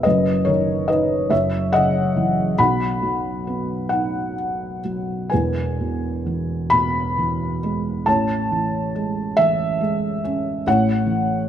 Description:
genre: classical, lyrical solo piano.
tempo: 42-48 BPM (dotted quarters).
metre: 6/8.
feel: rubato.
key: B major, E major from 5.3 s.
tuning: A4 = 441 Hz.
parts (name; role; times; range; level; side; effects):
felt-muted upright piano; solo; 0.0-11.5 s; E1 to B5; -18 LUFS; equal; none.
room: moderate scoring stage reverb, RT60 1.9 s.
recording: none.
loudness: -18 LUFS.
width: side -10 dB against mid.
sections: 0.0-5.3 A section; 5.3-11.5 B section.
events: none.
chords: 0.0 B/F#; 1.3 F#5; 2.6 B; 5.3 E; 8.1 Amaj7; 10.7 F#m7/A.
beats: | 0.05 1.32 | 2.58 3.91 | 5.31 6.72 | 8.07 9.39 | 10.67.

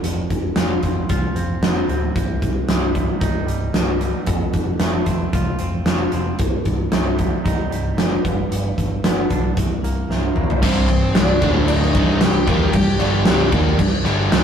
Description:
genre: quiet-loud alternative rock.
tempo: 113 BPM.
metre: 4/4.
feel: straight.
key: C dorian, C minor from 10.6 s.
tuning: A4 = 440 Hz.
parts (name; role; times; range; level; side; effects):
twangy electric guitar; arpeggios; 0.0-10.6 s; C2 to F4; -27 LUFS; right 3 dB; none.
overdriven picked electric bass; bass; 0.0-14.4 s; C1 to C2; -23 LUFS; left 1 dB; none.
big rock drum kit; drums; 0.0-14.4 s; crash cymbal, hi-hat, kick drum, snare drum, toms; -19 LUFS; equal; none.
bluesy overdriven lead guitar; melody; 10.6-13.5 s; C4 to G5; -24 LUFS; right 1 dB; distortion, analog delay.
biting overdriven guitar; riff; 10.6-14.4 s; C2 to G3; -22 LUFS; left 1 dB; none.
distorted electric guitar; riff; 10.6-14.4 s; C2 to G3; -27 LUFS; right 6 dB; overdrive.
overdriven electric guitar; riff; 10.6-14.4 s; C2 to G3; -23 LUFS; left 3 dB; none.
room: light reverb.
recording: rough rehearsal-room recording, warm saturation.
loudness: -16 LUFS.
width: side -8 dB against mid.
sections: 0.0-10.6 A section; 10.6-14.4 B section.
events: drum fill 10.1-10.6.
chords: 0.0 F5; 2.2 Cm; 4.3 F; 6.4 Cm; 8.2 G; 9.6 Bbsus2/C; 10.6 C5; 11.4 D5; 11.9 Cm.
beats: | 0.04 0.57 1.10 1.63 | 2.16 2.69 3.22 3.75 | 4.28 4.80 5.33 5.86 | 6.39 6.92 7.45 7.98 | 8.51 9.04 9.57 10.10 | 10.62 11.15 11.68 12.21 | 12.73 13.26 13.79 14.31.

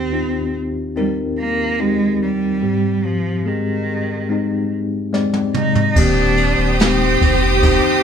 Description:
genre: pop ballad.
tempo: 72 BPM.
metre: 4/4.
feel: straight.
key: Eb major.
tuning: A4 = 436 Hz.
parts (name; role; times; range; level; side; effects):
rich cello; melody; 0.0-8.0 s; Eb3 to Eb4; -20 LUFS; right 3 dB; none.
tine electric piano; accompaniment; 0.0-8.0 s; Eb2 to D5; -20 LUFS; left 3 dB; medium tremolo.
jazz brush drum kit; drums; 5.1-7.8 s; crash cymbal, kick drum, ride cymbal, snare drum, toms; -18 LUFS; right 1 dB; none.
warm studio violin section; second line; 6.0-8.0 s; G4; -20 LUFS; right 3 dB; none.
clear studio string section; sustained chords; 6.0-8.0 s; C5 to Eb6; -23 LUFS; left 1 dB; none.
warm sub bass; bass; 6.0-7.8 s; Eb1 to F1; -20 LUFS; equal; none.
room: light reverb.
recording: band playing live in one room.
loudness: -15 LUFS.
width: side -7 dB against mid.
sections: 0.0-6.0 A section; 6.0-8.0 B section.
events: drum fill 5.1-6.0.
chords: 0.0 Eb6; 2.6 Abmaj7; 6.0 Eb6.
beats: 0.13 0.96 1.80 | 2.63 3.46 4.30 5.13 | 5.96 6.80 7.63.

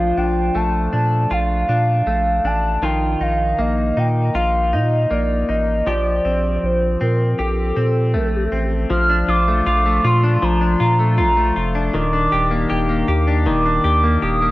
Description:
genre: dream pop.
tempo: 79 BPM.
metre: 4/4.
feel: straight.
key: Bb major.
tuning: A4 = 440 Hz.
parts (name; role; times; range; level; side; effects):
hollow clarinet-like synth lead; melody; 0.0-14.5 s; G4 to F6; -20 LUFS; right 1 dB; chorus, tape echo.
direct-recorded clean electric guitar; arpeggios; 0.0-14.5 s; Eb3 to G4; -21 LUFS; left 2 dB; lush chorus, tape echo.
saturated sub bass; bass; 0.0-14.5 s; Eb1 to Bb2; -20 LUFS; equal; transformer saturation.
room: moderate recital hall reverb, RT60 1.6 s.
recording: worn, warbling old tape, cassette tape, warbly pitch drift.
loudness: -15 LUFS.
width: side -18 dB against mid.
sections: 0.0-8.9 A section; 8.9-14.5 B section.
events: none.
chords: 0.0 Bbmaj7; 2.8 Ebsus2/Bb; 5.9 Fadd9/Bb; 8.9 Bbmaj7; 11.9 Ebmaj7.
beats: 0.55 1.31 2.07 | 2.83 3.59 4.35 5.11 | 5.87 6.63 7.39 8.15 | 8.91 9.67 10.43 11.19 | 11.95 12.71 13.46 14.22.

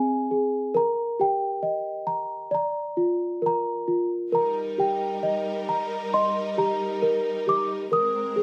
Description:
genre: children's music, lullaby.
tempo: 67 BPM.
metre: 4/4.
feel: rubato.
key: Eb major.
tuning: A4 = 441 Hz.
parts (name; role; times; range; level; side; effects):
small celesta; melody; 0.0-8.4 s; C4 to Eb6; -26 LUFS; equal; none.
rich symphonic string section; sustained chords; 4.3-8.4 s; G3 to Bb4; -34 LUFS; equal; none.
room: light reverb.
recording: close, detailed microphones.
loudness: -25 LUFS.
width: mono.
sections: 0.0-8.4 A section.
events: none.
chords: 0.0 Ab; 0.7 Eb; 2.5 Bb; 4.3 Eb; 7.9 Abadd9.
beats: | 0.74 1.62 2.52 3.43 | 4.33 5.23 6.13 7.03 | 7.92.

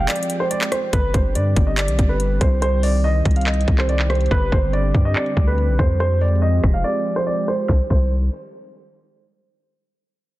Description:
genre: hip hop, trap.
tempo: 142 BPM.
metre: 4/4.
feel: half-time.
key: C harmonic minor.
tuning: A4 = 440 Hz.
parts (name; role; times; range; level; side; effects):
dark concert grand piano; melody; 0.0-8.1 s; B4 to F5; -23 LUFS; right 1 dB; low-pass filter, digital delay.
warm velvety synth lead; second line; 0.0-0.9 s; G5; -31 LUFS; right 2 dB; chorus, digital delay.
warm analog pad; sustained chords; 0.0-7.9 s; D3 to G4; -27 LUFS; right 1 dB; chorus.
long sustained 808-style bass; bass; 0.0-8.3 s; F1 to G2; -19 LUFS; equal; none.
trap drum kit; drums; 0.1-8.0 s; crash cymbal, handclaps, hi-hat, kick drum, rim click, snare drum; -20 LUFS; equal; none.
room: little or no reverb.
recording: dense, heavily limited modern master, low-pass filter.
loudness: -16 LUFS.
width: side -17 dB against mid.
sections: 0.9-7.7 A section; 7.7-9.4 B section.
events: break 0.1-0.9, 6.8-7.7; filter sweep 0.9-7.7.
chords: 0.0 Fmadd9; 0.9 Gsus4; 2.6 Cm; 4.3 Gsus4; 6.0 Fmadd9; 7.7 C5.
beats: 0.09 0.51 | 0.93 1.35 1.78 2.20 | 2.62 3.04 3.47 3.89 | 4.31 4.73 5.16 5.58 | 6.00 6.42 6.85 7.27 | 7.69 8.11.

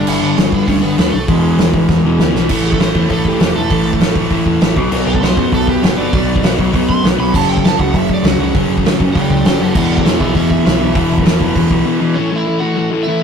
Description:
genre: punk rock.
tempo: 198 BPM.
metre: 4/4.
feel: straight.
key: A major.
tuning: A4 = 442 Hz.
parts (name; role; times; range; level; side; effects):
overdriven semi-hollow guitar; melody; 0.0-13.2 s; G#3 to C6; -22 LUFS; right 4 dB; ping-pong delay.
distorted electric guitar; riff; 0.0-12.2 s; E2 to B3; -19 LUFS; right 6 dB; distortion.
sludgy distorted guitar; riff; 0.0-13.2 s; E2 to B3; -15 LUFS; left 4 dB; overdrive.
growling picked electric bass; bass; 0.0-11.8 s; E1 to F#2; -21 LUFS; equal; overdrive.
loose indie drum kit; drums; 0.1-11.8 s; crash cymbal, hi-hat, kick drum, snare drum; -16 LUFS; right 1 dB; none.
room: light reverb.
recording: rough rehearsal-room recording, tube saturation.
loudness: -11 LUFS.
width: side -7 dB against mid.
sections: 0.0-2.5 A section; 2.5-12.2 B section; 12.2-13.2 C section.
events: drum fill 1.9-2.5; overdriven electric guitar solo 2.5-12.2.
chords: 0.0 G; 1.3 E; 2.5 A5; 4.8 Bm; 7.3 F#5; 9.8 E5; 12.2 A.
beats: | 0.07 0.37 0.68 0.98 | 1.28 1.59 1.89 2.19 | 2.50 2.80 3.10 3.40 | 3.71 4.01 4.31 4.62 | 4.92 5.22 5.53 5.83 | 6.13 6.43 6.74 7.04 | 7.34 7.64 7.94 8.25 | 8.55 8.85 9.15 9.45 | 9.75 10.06 10.36 10.66 | 10.96 11.26 11.56 11.86 | 12.16 12.46 12.76 13.06.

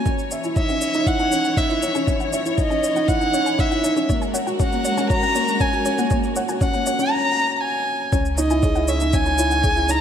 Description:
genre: piano and strings electronica.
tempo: 119 BPM.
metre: 4/4.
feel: straight.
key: unclear.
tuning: A4 = 440 Hz.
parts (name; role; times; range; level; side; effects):
dark violin; melody; 0.0-10.0 s; D#5 to A#5; -22 LUFS; equal; ping-pong delay.
felt-muted upright piano; riff; 0.0-10.0 s; A#3 to F#5; -23 LUFS; equal; ping-pong delay.
warm symphonic string section; sustained chords; 0.1-10.0 s; E3 to C#5; -30 LUFS; equal; sidechain pumping.
soft round pluck; arpeggios; 0.1-9.9 s; C#5 to G#5; -31 LUFS; left 2 dB; chorus, sidechain pumping, ping-pong delay.
electronic kick drum; drums; 0.1-9.7 s; none; -22 LUFS; equal; overdrive.
shaker; drums; 0.1-10.0 s; none; -32 LUFS; equal; overdrive.
warm sub bass; bass; 8.1-10.0 s; C#2; -23 LUFS; equal; sidechain pumping.
room: moderate scoring stage reverb, RT60 2.0 s, studio reverb.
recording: none.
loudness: -18 LUFS.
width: side -8 dB against mid.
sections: 0.0-8.1 A section; 8.1-10.0 B section.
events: build-up 0.0-8.1; filter sweep on synth arpeggio sound 0.0-8.1; drop 8.1-10.0.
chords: 0.1 C#madd9; 4.1 F#add9; 8.1 C#madd9.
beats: | 0.06 0.56 1.07 1.57 | 2.08 2.58 3.09 3.59 | 4.09 4.60 5.10 5.61 | 6.11 6.62 7.12 7.62 | 8.13 8.63 9.14 9.64.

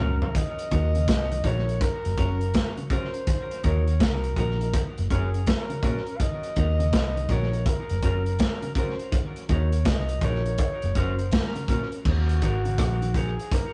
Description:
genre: roots reggae.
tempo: 82 BPM.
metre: 4/4.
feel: swing 64% on 16ths.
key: Eb dorian.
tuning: A4 = 439 Hz.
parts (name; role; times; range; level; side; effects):
warm flugelhorn; melody; 0.0-13.7 s; Gb4 to F5; -35 LUFS; equal; none.
semi-hollow electric guitar; accompaniment; 0.0-13.3 s; Db4 to Bb4; -39 LUFS; equal; tape echo.
mellow electric guitar; arpeggios; 0.0-13.3 s; Bb2 to Eb3; -38 LUFS; equal; none.
dark upright piano; stabs; 0.0-11.9 s; Db4 to Bb4; -39 LUFS; equal; none.
vintage muted fingered electric bass; bass; 0.0-13.4 s; Gb1 to Eb2; -28 LUFS; equal; none.
crunchy breakbeat drum kit; drums; 0.2-13.7 s; crash cymbal, hi-hat, kick drum, rim click, snare drum, toms; -28 LUFS; equal; none.
room: light reverb.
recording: rough rehearsal-room recording, nothing above 10.6 kHz.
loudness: -25 LUFS.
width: mono.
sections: 0.4-12.1 A section; 12.1-13.7 B section.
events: drum fill 0.0-0.4.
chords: 0.4 Ebm; 1.8 Gb; 3.3 Ebm; 4.7 Gb; 6.2 Ebm; 7.7 Gb; 9.1 Ebm; 10.6 Gb; 12.1 Ebm.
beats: | 0.35 1.08 1.81 2.55 | 3.28 4.01 4.74 5.47 | 6.20 6.93 7.66 8.40 | 9.13 9.86 10.59 11.32 | 12.05 12.79 13.52.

